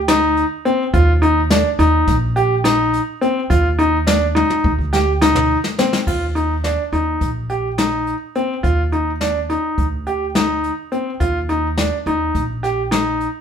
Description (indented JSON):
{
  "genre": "progressive instrumental, band music in an uneven meter",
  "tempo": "210 BPM (eighths)",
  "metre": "9/8",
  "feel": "straight",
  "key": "Eb major",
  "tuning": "A4 = 439 Hz",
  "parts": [
    { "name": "upright bass", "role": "bass", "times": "0.0-13.3 s", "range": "Bb1 to Eb2", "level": "-20 LUFS", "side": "equal", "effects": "none" },
    { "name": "bright grand piano", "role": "arpeggios", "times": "0.1-13.3 s", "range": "C4 to G4", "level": "-17 LUFS", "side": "equal", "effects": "none" },
    { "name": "jazz brush drum kit", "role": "drums", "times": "0.1-13.3 s", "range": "crash cymbal, hi-hat, kick drum, snare drum, toms", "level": "-21 LUFS", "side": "left 2 dB", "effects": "none" }
  ],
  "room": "moderate studio reverb, RT60 0.8 s",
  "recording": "band playing live in one room",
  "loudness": "-15 LUFS",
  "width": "side -8 dB against mid",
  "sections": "0.0-6.1 A section; 6.1-13.4 B section",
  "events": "drum fill 4.4-6.1",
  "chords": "0.0 Ebmaj7(no3)"
}